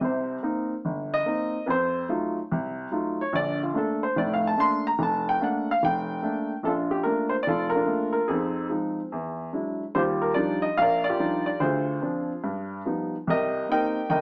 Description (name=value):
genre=solo jazz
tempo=145 BPM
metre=4/4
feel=swing 67% on 8ths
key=Bb major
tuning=A4 = 437 Hz
part: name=warm upright piano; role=solo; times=0.0-14.2 s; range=F1 to C6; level=-26 LUFS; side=equal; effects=none
room=light reverb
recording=small speaker sound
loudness=-26 LUFS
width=mono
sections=0.0-6.6 A section; 6.6-14.2 B section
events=upright piano solo 0.0-6.6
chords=0.0 Cm7; 1.7 F7b9; 3.3 Bbmaj7; 8.3 Fm7; 9.1 E9; 9.9 Ebmaj9; 11.6 Dm7b5; 12.4 Gaug7; 13.3 Cm7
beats=| 0.01 0.43 0.84 1.26 | 1.67 2.08 2.50 2.91 | 3.33 3.74 4.15 4.57 | 4.98 5.39 5.81 6.22 | 6.63 7.05 7.46 7.88 | 8.29 8.70 9.12 9.53 | 9.95 10.36 10.78 11.19 | 11.60 12.02 12.43 12.85 | 13.27 13.68 14.10